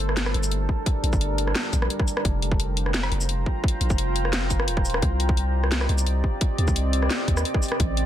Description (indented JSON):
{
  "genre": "half-time drum and bass",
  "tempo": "173 BPM",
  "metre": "4/4",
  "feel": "swing 53% on 16ths, half-time",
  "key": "unclear",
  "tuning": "A4 = 440 Hz",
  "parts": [
    { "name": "deep dark ambient pad", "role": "sustained chords", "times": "0.0-8.1 s", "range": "G3 to Bb5", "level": "-29 LUFS", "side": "equal", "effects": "chorus, built-in reverb, vintage 12-bit sampler grit, sidechain pumping" },
    { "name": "long sustained 808-style bass", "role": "bass", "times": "0.0-8.1 s", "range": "Eb1 to Eb2", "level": "-24 LUFS", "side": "equal", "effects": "none" },
    { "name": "drum and bass drum kit", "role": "drums", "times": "0.0-8.0 s", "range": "hi-hat, rim click, shaker, snare drum", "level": "-27 LUFS", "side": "equal", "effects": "none" },
    { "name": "electronic kick drum", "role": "drums", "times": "0.7-7.9 s", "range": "none", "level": "-24 LUFS", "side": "equal", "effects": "overdrive" }
  ],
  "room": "light reverb, digital ambience",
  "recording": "dense, heavily limited modern master",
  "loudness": "-21 LUFS",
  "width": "side -11 dB against mid",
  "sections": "0.0-8.1 A section",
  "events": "none",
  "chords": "0.0 Gmadd9; 2.2 Fsus4; 5.0 Cm",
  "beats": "0.17 0.52 | 0.86 1.21 1.56 1.90 | 2.25 2.60 2.94 3.29 | 3.64 3.98 4.33 4.68 | 5.02 5.37 5.72 6.07 | 6.41 6.76 7.11 7.45 | 7.80"
}